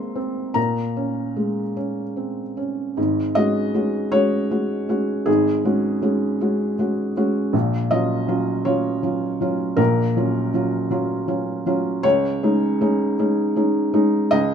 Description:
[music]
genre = neoclassical minimalist piano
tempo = 53 BPM (dotted quarters)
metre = 6/8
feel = rubato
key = unclear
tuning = A4 = 440 Hz
[part]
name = felt-muted upright piano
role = solo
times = 0.0-14.5 s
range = Ab1 to Eb6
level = -19 LUFS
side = equal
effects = none
[sound]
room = light reverb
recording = minimal, uncompressed stereo recording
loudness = -19 LUFS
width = side -7 dB against mid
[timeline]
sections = 0.0-3.0 A section; 3.0-14.5 B section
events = none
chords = 0.0 Ab; 0.6 Bbm7; 3.0 Ab7sus4; 7.5 Gbmaj7/Bb; 12.0 Dbsus2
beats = | 0.56 1.77 | 2.97 4.13 | 5.27 6.40 | 7.53 8.66 | 9.79 10.91 | 12.04 13.18 | 14.33

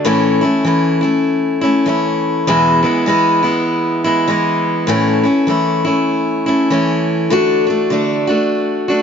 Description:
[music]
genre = country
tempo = 99 BPM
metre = 4/4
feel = swing 60% on 8ths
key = A major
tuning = A4 = 440 Hz
[part]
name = picked steel-string acoustic guitar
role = solo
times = 0.0-9.0 s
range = E2 to F#4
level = -12 LUFS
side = left 1 dB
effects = none
[sound]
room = light reverb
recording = nothing above 7.6 kHz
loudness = -12 LUFS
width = side -7 dB against mid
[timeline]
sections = 0.0-9.0 A section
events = none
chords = 0.1 A; 2.5 E; 4.9 A; 7.3 D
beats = | 0.05 0.66 1.26 1.87 | 2.47 3.08 3.68 4.29 | 4.89 5.50 6.10 6.70 | 7.31 7.91 8.52

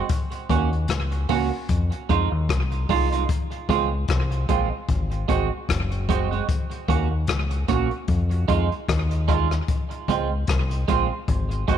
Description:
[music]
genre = roots reggae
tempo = 75 BPM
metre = 4/4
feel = swing 56% on 16ths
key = Db major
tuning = A4 = 440 Hz
[part]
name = clean electric guitar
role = accompaniment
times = 0.0-11.8 s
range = Ab3 to Gb4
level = -26 LUFS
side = right 12 dB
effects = lush chorus, tape echo
[part]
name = jazz brush drum kit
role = drums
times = 0.1-11.8 s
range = hi-hat, kick drum, rim click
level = -26 LUFS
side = left 4 dB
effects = slapback echo
[part]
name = deep dub fingered electric bass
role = bass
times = 0.5-11.8 s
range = Gb1 to F2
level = -24 LUFS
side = left 1 dB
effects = none
[sound]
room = small room reverb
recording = 1960s-style stereo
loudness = -21 LUFS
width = side -9 dB against mid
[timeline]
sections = 0.0-11.8 A section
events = none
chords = 0.1 Ebm7; 1.7 Fm7; 3.3 Dbmaj7; 4.9 Ab7; 6.5 Ebm7; 8.1 Fm7; 9.7 Dbmaj7; 11.3 Ab7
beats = | 0.09 0.89 1.69 2.49 | 3.29 4.09 4.89 5.69 | 6.49 7.28 8.08 8.88 | 9.68 10.48 11.28

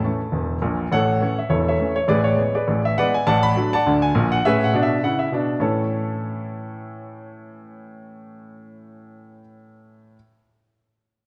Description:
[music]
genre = jazz, stride piano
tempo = 205 BPM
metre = 4/4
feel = swing 58% on 8ths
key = A major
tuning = A4 = 440 Hz
[part]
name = clear grand piano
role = solo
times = 0.0-10.2 s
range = E1 to B5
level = -22 LUFS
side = equal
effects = none
[sound]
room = moderate scoring stage reverb, RT60 2.0 s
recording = none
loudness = -20 LUFS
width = mono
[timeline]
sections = 0.9-5.6 A section; 5.6-7.9 B section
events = none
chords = 0.0 A; 2.1 E7/A; 3.3 D/A; 4.4 E7/A; 5.6 A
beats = 0.03 0.33 0.62 | 0.91 1.20 1.50 1.79 | 2.08 2.38 2.67 2.96 | 3.25 3.55 3.84 4.13 | 4.42 4.72 5.01 5.30 | 5.59 5.89 6.18 6.47 | 6.77 7.06 7.35 7.64

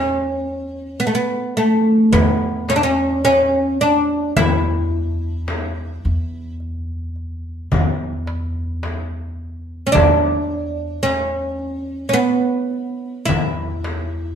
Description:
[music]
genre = Turkish makam ensemble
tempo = 108 BPM (eighths)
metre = 10/8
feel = straight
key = E makam huseyni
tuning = A4 = 440 Hz
[part]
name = oud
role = melody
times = 0.0-14.3 s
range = A3 to E4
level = -17 LUFS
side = right 1 dB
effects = none
[part]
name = upright bass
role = bass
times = 0.0-14.3 s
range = E2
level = -24 LUFS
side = equal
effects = none
[part]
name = darbuka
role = percussion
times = 1.0-14.1 s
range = none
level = -26 LUFS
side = equal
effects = none
[part]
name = frame drum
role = percussion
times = 2.1-14.1 s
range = none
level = -24 LUFS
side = left 3 dB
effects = none
[sound]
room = wet stone room reverb, RT60 1.1 s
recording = band playing live in one room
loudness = -17 LUFS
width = side -8 dB against mid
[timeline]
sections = 0.0-14.3 A section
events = none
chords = none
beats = 0.45 1.01 1.57 2.13 2.69 3.25 3.80 | 4.36 4.92 5.48 6.04 6.60 7.16 7.71 8.27 8.83 9.39 | 9.95 10.50 11.06 11.62 12.18 12.74 13.29 13.85

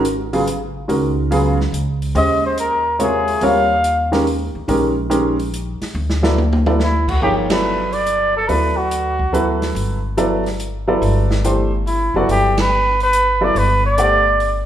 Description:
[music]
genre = modal jazz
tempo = 142 BPM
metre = 3/4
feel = swing 67% on 8ths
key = G major from 7.2 s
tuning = A4 = 445 Hz
[part]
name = warm upright piano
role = accompaniment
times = 0.0-14.2 s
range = C3 to F#5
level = -19 LUFS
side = equal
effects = none
[part]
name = upright bass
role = bass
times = 0.0-14.7 s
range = F#1 to Eb2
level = -21 LUFS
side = equal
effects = none
[part]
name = open jazz drum kit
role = drums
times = 0.0-14.5 s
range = crash cymbal, hi-hat, kick drum, ride cymbal, snare drum, toms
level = -26 LUFS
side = right 1 dB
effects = none
[part]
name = dark trumpet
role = melody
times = 2.2-4.1, 6.8-9.6, 11.9-14.7 s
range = E4 to F5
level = -17 LUFS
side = equal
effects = none
[sound]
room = moderate recital hall reverb, RT60 1.4 s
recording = recorded in a church or concert hall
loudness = -15 LUFS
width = side -10 dB against mid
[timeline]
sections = 0.0-7.2 A section; 7.2-14.7 B section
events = drum fill 5.9-6.8; band accent 7.4, 12.5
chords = 0.0 Db13sus4; 2.2 Eb13sus4; 5.9 D69; 7.2 Gmaj9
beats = 0.04 0.46 | 0.89 1.31 1.73 | 2.15 2.57 3.00 | 3.42 3.84 4.26 | 4.68 5.11 5.53 | 5.95 6.37 6.79 | 7.21 7.64 8.06 | 8.48 8.90 9.33 | 9.75 10.17 10.59 | 11.02 11.44 11.86 | 12.28 12.71 13.13 | 13.55 13.97 14.40

